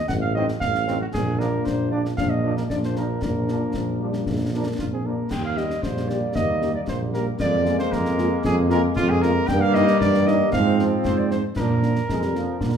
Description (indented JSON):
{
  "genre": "military-style march for wind band",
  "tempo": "115 BPM",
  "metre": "2/4",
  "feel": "straight",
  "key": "Eb major",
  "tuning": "A4 = 441 Hz",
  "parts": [
    { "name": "dark cornet", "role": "melody", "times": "0.0-12.8 s", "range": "F4 to G5", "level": "-26 LUFS", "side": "right 2 dB", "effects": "none" },
    { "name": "mellow tuba", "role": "bass", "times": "0.1-12.8 s", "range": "A1 to Bb2", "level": "-24 LUFS", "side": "right 2 dB", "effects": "none" },
    { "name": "concert snare drum, concert bass drum and clash cymbals", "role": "drums", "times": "0.1-12.8 s", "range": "none", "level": "-29 LUFS", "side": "left 2 dB", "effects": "none" },
    { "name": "warm trombone section", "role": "sustained chords", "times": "0.3-12.7 s", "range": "D3 to D4", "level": "-27 LUFS", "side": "equal", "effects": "none" },
    { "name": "dark French horn section", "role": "accompaniment", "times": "0.4-12.4 s", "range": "F3 to G4", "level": "-28 LUFS", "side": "left 4 dB", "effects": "none" },
    { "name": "dark euphonium", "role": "second line", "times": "3.7-5.3 s", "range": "F3 to D4", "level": "-30 LUFS", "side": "left 1 dB", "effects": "none" }
  ],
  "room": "moderate large studio reverb, RT60 1.0 s",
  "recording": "minimal, uncompressed stereo recording",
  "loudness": "-20 LUFS",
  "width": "side -8 dB against mid",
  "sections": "0.0-5.3 A section; 5.3-12.8 B section",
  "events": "none",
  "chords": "0.1 Adim7; 1.1 Bb; 5.3 Eb; 7.4 Bb5/F; 9.5 Eb/G; 10.5 Fm/Ab; 11.6 Bb"
}